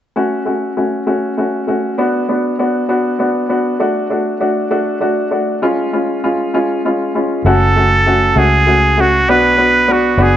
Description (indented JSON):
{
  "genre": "six-eight pop ballad",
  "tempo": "66 BPM (dotted quarters)",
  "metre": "6/8",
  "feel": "straight",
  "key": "F# harmonic minor",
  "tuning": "A4 = 440 Hz",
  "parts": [
    { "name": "clear upright piano", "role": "accompaniment", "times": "0.2-10.4 s", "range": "G#3 to F#4", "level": "-14 LUFS", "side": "left 1 dB", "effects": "none" },
    { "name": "vintage muted fingered electric bass", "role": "bass", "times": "7.4-10.4 s", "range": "F#1 to C#2", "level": "-16 LUFS", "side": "equal", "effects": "none" },
    { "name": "trumpet with straight mute", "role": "melody", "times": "7.5-10.4 s", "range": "F#4 to B4", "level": "-12 LUFS", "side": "right 2 dB", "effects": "tape echo" }
  ],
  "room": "moderate plate reverb, RT60 2.5 s",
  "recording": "nothing above 8.0 kHz",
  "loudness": "-12 LUFS",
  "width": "side -11 dB against mid",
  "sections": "0.2-7.4 A section; 7.4-10.4 B section",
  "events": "none",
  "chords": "0.2 F#m; 2.0 Bm; 3.8 D; 5.6 C#; 7.4 F#m; 9.3 Bm"
}